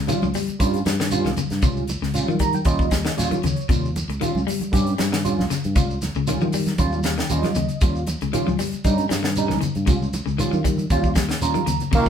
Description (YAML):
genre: afrobeat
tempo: 116 BPM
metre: 4/4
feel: straight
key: Eb mixolydian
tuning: A4 = 440 Hz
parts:
  - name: electric guitar at the edge of break-up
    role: arpeggios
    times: 0.0-12.1 s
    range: C3 to G3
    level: -26 LUFS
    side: left 8 dB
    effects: none
  - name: fingered electric bass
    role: bass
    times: 0.0-12.1 s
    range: Db2 to Eb3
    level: -25 LUFS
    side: equal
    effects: none
  - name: barky tine electric piano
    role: accompaniment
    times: 0.1-12.1 s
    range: G3 to Bb5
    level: -26 LUFS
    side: right 3 dB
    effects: phaser
  - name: tight funk drum kit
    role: drums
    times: 0.1-12.1 s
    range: crash cymbal, hi-hat, kick drum, snare drum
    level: -23 LUFS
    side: equal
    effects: none
  - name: shekere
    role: percussion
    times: 0.1-12.1 s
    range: none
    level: -31 LUFS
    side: right 2 dB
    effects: none
  - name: congas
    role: percussion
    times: 0.2-11.9 s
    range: none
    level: -29 LUFS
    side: right 2 dB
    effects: none
  - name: clear trombone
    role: melody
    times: 11.9-12.1 s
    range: Bb3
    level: -19 LUFS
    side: right 2 dB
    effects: none
  - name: trombone with metal mute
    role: second line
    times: 12.0-12.1 s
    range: Eb3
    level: -26 LUFS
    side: right 6 dB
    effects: none
room: wet studio reverb, RT60 0.6 s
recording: band playing live in one room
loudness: -19 LUFS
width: side -8 dB against mid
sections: 0.0-11.9 A section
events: tine electric piano fill 2.1-3.7, 6.8-7.8, 11.2-11.9; drum fill 11.5-11.9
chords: 0.0 Eb7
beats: 0.09 0.60 1.12 | 1.63 2.15 2.66 3.18 | 3.69 4.21 4.72 5.24 | 5.75 6.27 6.78 7.30 | 7.82 8.33 8.85 9.36 | 9.88 10.39 10.90 11.42 | 11.94